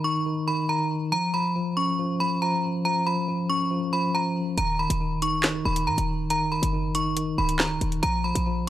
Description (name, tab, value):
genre	hip hop, drill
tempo	139 BPM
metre	4/4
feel	half-time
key	Eb minor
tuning	A4 = 440 Hz
part	metallic FM bell	melody	0.0-8.6 s	Bb5 to Db6	-26 LUFS	equal	chorus, tape echo
part	mellow tine electric piano	accompaniment	0.0-8.7 s	Eb3 to Eb4	-27 LUFS	left 1 dB	medium stereo tremolo
part	short 808-style bass	bass	4.6-8.7 s	Db1 to Bb2	-29 LUFS	equal	none
part	drill drum kit	drums	4.6-8.5 s	handclaps, hi-hat, snare drum	-26 LUFS	equal	overdrive
room	little or no reverb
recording	dry, gritty hardware recording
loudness	-23 LUFS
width	side -13 dB against mid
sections	0.0-8.7 A section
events	none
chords	0.0 N.C.; 1.1 Db7/F; 4.6 Ebm; 8.0 Bb5